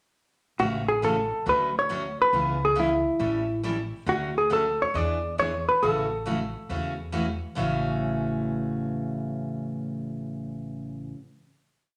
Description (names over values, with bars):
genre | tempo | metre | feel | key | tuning
country, western swing | 137 BPM | 4/4 | swing 67% on 8ths | A major | A4 = 444 Hz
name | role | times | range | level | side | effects
hollow-body jazz guitar | melody | 0.6-7.1 s | E4 to D5 | -26 LUFS | equal | none
picked steel-string acoustic guitar | accompaniment | 0.6-11.2 s | A2 to A4 | -32 LUFS | equal | none
upright bass | bass | 0.6-11.1 s | A1 to E2 | -37 LUFS | equal | none
room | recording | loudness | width
moderate large studio reverb, RT60 0.9 s | none | -27 LUFS | mono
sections
0.6-7.6 A section; 7.6-11.1 final chord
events
none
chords
0.6 A6; 1.5 Dmaj7; 2.3 C#m7; 3.2 A7; 4.1 Dmaj7; 4.9 E7; 5.8 A6